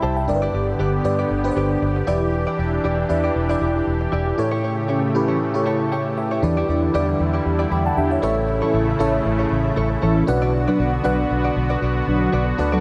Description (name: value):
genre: pop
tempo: 117 BPM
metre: 4/4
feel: swing 55% on 16ths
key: E dorian from 6.4 s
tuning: A4 = 440 Hz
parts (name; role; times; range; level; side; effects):
- FM electric piano with soft pad layer; accompaniment; 0.0-12.8 s; G2 to B5; -25 LUFS; equal; chorus, phaser, shimmer reverb
- warm analog pad; sustained chords; 0.0-12.8 s; C3 to G4; -27 LUFS; equal; chorus, shimmer reverb
- direct-recorded clean electric guitar; riff; 0.0-12.8 s; E4 to E5; -32 LUFS; equal; subtle chorus, digital delay, shimmer reverb
- vintage muted fingered electric bass; bass; 0.0-12.8 s; E1 to G2; -25 LUFS; equal; none
- mellow synth brass; stabs; 4.9-12.8 s; E3 to B4; -28 LUFS; equal; chorus, digital delay, shimmer reverb
room: moderate lush hall reverb, RT60 2.7 s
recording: none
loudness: -20 LUFS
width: mono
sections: 0.0-6.4 A section; 6.4-12.8 B section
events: band accent 4.4-6.4; FM electric piano fill 5.4-6.4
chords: 0.3 G; 2.1 Em7; 4.4 A7; 6.4 Em7; 8.2 A; 10.3 Bm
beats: | 0.28 0.79 1.30 1.82 | 2.33 2.84 3.36 3.87 | 4.38 4.89 5.41 5.92 | 6.43 6.95 7.46 7.97 | 8.48 9.00 9.51 10.02 | 10.54 11.05 11.56 12.07 | 12.59